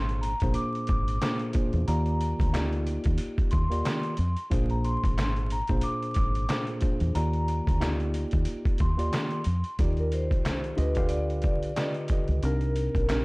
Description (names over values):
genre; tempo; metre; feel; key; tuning
hip hop, boom-bap hip-hop; 91 BPM; 4/4; swing 56% on 16ths; Eb major; A4 = 441 Hz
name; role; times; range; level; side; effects
vibraphone with soft mallets; melody; 0.0-13.2 s; Bb4 to D6; -34 LUFS; equal; high-pass filter, low-pass filter
tine electric piano; accompaniment; 0.0-13.2 s; Bb2 to F5; -31 LUFS; equal; medium stereo tremolo, cassette tape, high-pass filter, low-pass filter
deep dub fingered electric bass; bass; 0.0-13.2 s; Ab1 to F2; -28 LUFS; equal; none
trip hop sampler-style drum kit; drums; 0.1-13.2 s; handclaps, hi-hat, kick drum, snare drum; -28 LUFS; equal; none
room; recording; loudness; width
digital ambience; dry, gritty hardware recording, transformer saturation, vinyl crackle; -24 LUFS; side -26 dB against mid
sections
0.0-9.8 A section; 9.8-13.2 B section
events
none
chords
0.0 Bb9; 1.9 Ebmaj9; 4.5 Bb9; 7.2 Ebmaj9; 10.8 G7b13; 12.4 Cm9